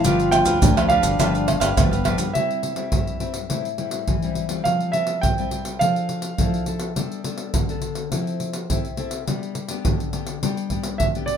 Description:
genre	samba and choro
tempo	104 BPM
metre	4/4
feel	straight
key	unclear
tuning	A4 = 440 Hz
part	clear concert grand piano	melody	0.0-6.6, 11.0-11.4 s	D5 to G5	-23 LUFS	right 4 dB	none
part	mellow trombone	second line	0.0-2.3 s	B3 to F4	-24 LUFS	left 3 dB	none
part	cavaquinho	accompaniment	0.0-2.3 s	D4 to F5	-28 LUFS	right 3 dB	none
part	nylon-string guitar	accompaniment	0.0-11.4 s	G2 to A4	-27 LUFS	left 4 dB	none
part	fingered electric bass	bass	0.0-2.3 s	G1 to G2	-24 LUFS	equal	none
part	maracas, surdo, pandeiro and tamborim	percussion	0.0-11.4 s	none	-23 LUFS	right 1 dB	none
room	moderate studio ambience, RT60 0.5 s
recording	minimal, uncompressed stereo recording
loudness	-20 LUFS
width	side -8 dB against mid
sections	0.0-2.3 A section; 2.3-11.4 B section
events	none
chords	0.0 G7; 2.3 C; 3.5 Am7; 4.7 Fsus2; 5.8 Dmadd9/F; 7.0 Gadd9; 8.1 Fmaj7; 9.3 G

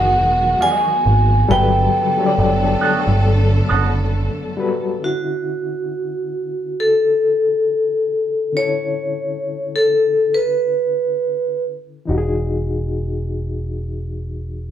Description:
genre	R&B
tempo	68 BPM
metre	4/4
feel	swing 56% on 16ths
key	D major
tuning	A4 = 439 Hz
part	vibraphone with hard mallets	melody	0.0-11.6 s	F#4 to G#5	-17 LUFS	equal	none
part	overdriven reed electric piano	accompaniment	0.0-14.7 s	D3 to D5	-24 LUFS	left 4 dB	fast tremolo
part	warm studio string section	sustained chords	0.0-5.0 s	D3 to A4	-24 LUFS	equal	none
part	deep dub picked electric bass	bass	0.0-4.3, 12.1-14.7 s	E1 to G#1	-18 LUFS	right 1 dB	none
part	electric guitar through a small old amp	second line	0.6-3.9 s	B3 to D#5	-22 LUFS	right 5 dB	wah
room	moderate large studio reverb, RT60 0.9 s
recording	band playing live in one room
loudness	-16 LUFS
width	side -10 dB against mid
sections	0.0-5.0 A section; 5.0-14.7 B section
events	none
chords	0.0 Emaj9; 1.5 Gmaj9; 5.0 Dmaj9; 12.1 Emaj9

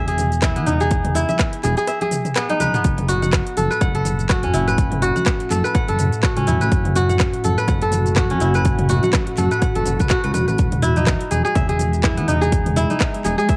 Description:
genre	afro house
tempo	124 BPM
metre	4/4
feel	swing 57% on 16ths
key	F# dorian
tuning	A4 = 435 Hz
part	kora	arpeggios	0.0-13.6 s	B3 to F#5	-23 LUFS	equal	sidechain pumping, cassette tape, tape echo
part	smooth synth bass	bass	0.0-13.4 s	E1 to F#2	-24 LUFS	equal	sidechain pumping
part	house drum kit	drums	0.1-13.6 s	handclaps, hi-hat, rim click, shaker, toms	-27 LUFS	equal	cassette tape
part	congas	percussion	0.2-13.4 s	none	-31 LUFS	equal	none
part	electronic kick drum	drums	0.4-13.6 s	none	-22 LUFS	equal	cassette tape
part	ethereal airy pad	sustained chords	3.8-13.6 s	A2 to F#4	-29 LUFS	equal	ensemble chorus, built-in reverb, sidechain pumping, cassette tape
room	light reverb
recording	home recording on cassette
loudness	-19 LUFS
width	mono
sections	0.0-13.6 A section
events	drum fill 2.5-2.8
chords	0.0 Emaj7; 2.8 F#m7; 10.6 Emaj7

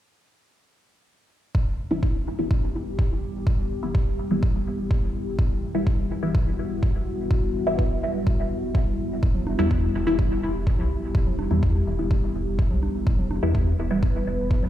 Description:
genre	dub techno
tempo	125 BPM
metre	4/4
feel	straight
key	E minor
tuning	A4 = 440 Hz
part	deep dark ambient pad	sustained chords	2.2-14.7 s	G3 to B4	-29 LUFS	left 1 dB	chorus, built-in reverb, sidechain pumping
part	electronic kick drum	drums	1.5-14.6 s	none	-22 LUFS	equal	overdrive
part	filtered dub chord stab	stabs	1.9-14.1 s	E3 to E4	-28 LUFS	left 1 dB	phaser, sidechain pumping, dub echo
part	round analog bass	bass	9.2-14.7 s	E1 to E2	-26 LUFS	equal	sidechain pumping
part	congas and bongos	percussion	9.3-14.7 s	none	-36 LUFS	equal	sidechain pumping on perc, dub echo
room	light reverb, digital ambience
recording	played on a big sound system in a bare room, large studio reverb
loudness	-22 LUFS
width	side -12 dB against mid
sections	1.5-14.7 A section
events	filter sweep on synth stab 1.5-14.7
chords	1.5 Em

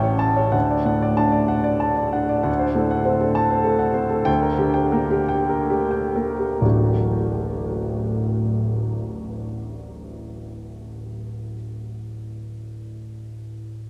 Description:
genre	classical, romantic character piece for solo piano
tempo	40-69 BPM (dotted quarters)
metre	6/8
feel	rubato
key	D major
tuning	A4 = 440 Hz
part	warm grand piano	solo	0.0-13.9 s	D1 to A5	-23 LUFS	equal	none
room	wet huge ambient reverb, RT60 8.2 s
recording	in a vast, echoing space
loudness	-21 LUFS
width	mono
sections	0.0-2.5 A section; 2.5-6.6 B section; 6.6-11.7 C section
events	slowing down 1.5-6.6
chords	0.0 A7; 0.5 D; 2.5 D7; 4.3 Gm/D; 6.6 D

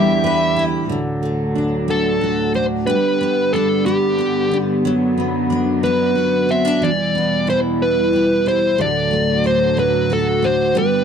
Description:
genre	six-eight pop ballad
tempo	61 BPM (dotted quarters)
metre	6/8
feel	straight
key	unclear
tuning	A4 = 440 Hz
part	dark smooth lead guitar	melody	0.0-11.0 s	G4 to E5	-18 LUFS	equal	overdrive
part	picked steel-string acoustic guitar	accompaniment	0.0-11.0 s	D3 to B4	-19 LUFS	equal	double-tracked left and right
part	warm studio string section	sustained chords	0.0-11.0 s	D2 to G4	-22 LUFS	right 1 dB	none
room	studio ambience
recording	dry, close 1970s-style studio recording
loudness	-15 LUFS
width	side -7 dB against mid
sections	0.9-11.0 A section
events	none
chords	0.0 Em7; 0.9 D; 2.9 G; 4.8 Bm/F#; 6.8 Em; 8.8 D

